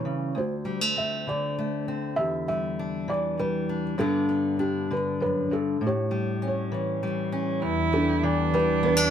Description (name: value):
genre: acoustic folk-pop ballad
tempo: 99 BPM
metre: 3/4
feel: straight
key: E minor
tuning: A4 = 436 Hz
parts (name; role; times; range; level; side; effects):
- fingerpicked steel-string acoustic guitar; accompaniment; 0.0-9.1 s; D2 to D4; -26 LUFS; left 2 dB; none
- felt-muted upright piano; melody; 0.4-9.1 s; D4 to E5; -28 LUFS; right 1 dB; none
- warm cello; second line; 7.6-9.1 s; D4 to E4; -26 LUFS; right 6 dB; none
- brassy analog pad; sustained chords; 7.6-9.1 s; E2 to G4; -29 LUFS; left 1 dB; chorus
room: light reverb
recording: close, detailed microphones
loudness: -24 LUFS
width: side -9 dB against mid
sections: 0.0-7.6 A section; 7.6-9.1 B section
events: none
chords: 0.4 D7; 2.2 Em7; 4.0 Gadd9; 5.8 A7; 7.6 Em7